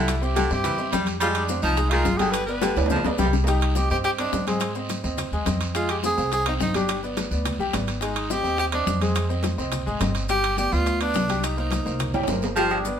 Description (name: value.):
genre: latin, salsa.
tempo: 211 BPM.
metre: 4/4.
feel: straight.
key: C minor.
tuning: A4 = 439 Hz.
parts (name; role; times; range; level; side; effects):
breathy tenor saxophone; melody; 0.0-13.0 s; C4 to B4; -26 LUFS; right 1 dB; none.
breathy baritone saxophone; second line; 0.0-3.3, 12.6-12.8 s; D3 to G3; -27 LUFS; right 1 dB; none.
bright upright piano; accompaniment; 0.0-13.0 s; G3 to Ab5; -28 LUFS; left 2 dB; none.
upright bass; bass; 0.0-12.9 s; G1 to Ab2; -27 LUFS; equal; none.
bongos and cowbell; percussion; 0.1-13.0 s; none; -33 LUFS; left 6 dB; none.
congas; percussion; 0.1-13.0 s; none; -32 LUFS; left 2 dB; none.
guiro; percussion; 0.1-12.6 s; none; -38 LUFS; right 4 dB; none.
maracas; percussion; 0.1-13.0 s; none; -40 LUFS; left 4 dB; none.
timbales and agogo bells; percussion; 0.1-12.9 s; none; -32 LUFS; right 6 dB; none.
room: wet studio reverb, RT60 0.8 s.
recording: band playing live in one room.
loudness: -21 LUFS.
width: side -8 dB against mid.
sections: 0.0-3.5 A section; 3.5-12.6 B section.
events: drum fill 2.6-3.5, 12.1-12.6.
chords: 0.1 C; 1.2 Fm; 2.3 G; 3.5 Cm; 4.6 Ab; 5.8 Fmadd9; 6.9 G; 8.0 Ab; 9.2 Fm7; 10.3 G7; 11.4 Cm7.